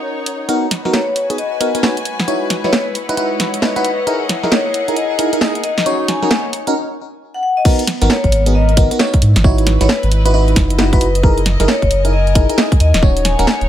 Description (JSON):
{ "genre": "UK garage, two-step garage", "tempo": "134 BPM", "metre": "4/4", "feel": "swing 63% on 16ths", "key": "G# minor", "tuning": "A4 = 441 Hz", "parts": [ { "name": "FM electric piano", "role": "stabs", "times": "0.0-13.5 s", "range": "B3 to D#5", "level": "-19 LUFS", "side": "right 1 dB", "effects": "chorus, phaser, low-pass filter" }, { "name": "warm chamber string section", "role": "texture", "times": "0.0-13.7 s", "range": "G#3 to G#5", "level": "-25 LUFS", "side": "left 2 dB", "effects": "sidechain pumping" }, { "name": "garage drum kit", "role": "drums", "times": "0.3-13.7 s", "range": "crash cymbal, hi-hat, snare drum", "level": "-18 LUFS", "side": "right 1 dB", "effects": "none" }, { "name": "vibraphone with hard mallets", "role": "melody", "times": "0.9-13.4 s", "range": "B4 to G#5", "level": "-20 LUFS", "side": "left 3 dB", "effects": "ping-pong delay" }, { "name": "electronic kick drum", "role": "drums", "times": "7.7-13.1 s", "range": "none", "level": "-13 LUFS", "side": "equal", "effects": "none" }, { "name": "saturated sub bass", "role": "bass", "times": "8.0-13.7 s", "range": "D#1 to G#2", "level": "-14 LUFS", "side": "equal", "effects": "tube saturation" } ], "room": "light reverb, digital ambience", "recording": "none", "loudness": "-12 LUFS", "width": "side -11 dB against mid", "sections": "0.5-7.7 A section; 7.7-13.7 B section", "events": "build-up 0.5-7.7; break 6.8-7.7; drop 7.7-13.7", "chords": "0.5 G#m9; 2.1 C#m11/G#; 4.1 F#13; 5.6 D#m7; 7.7 G#m9; 9.2 C#m11/G#; 11.2 F#13; 12.8 D#m7", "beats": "0.04 | 0.49 0.94 1.38 1.83 | 2.28 2.73 3.17 3.62 | 4.07 4.52 4.97 5.41 | 5.86 6.31 6.76 7.21 | 7.65 8.10 8.55 9.00 | 9.44 9.89 10.34 10.79 | 11.23 11.68 12.13 12.58 | 13.03 13.47" }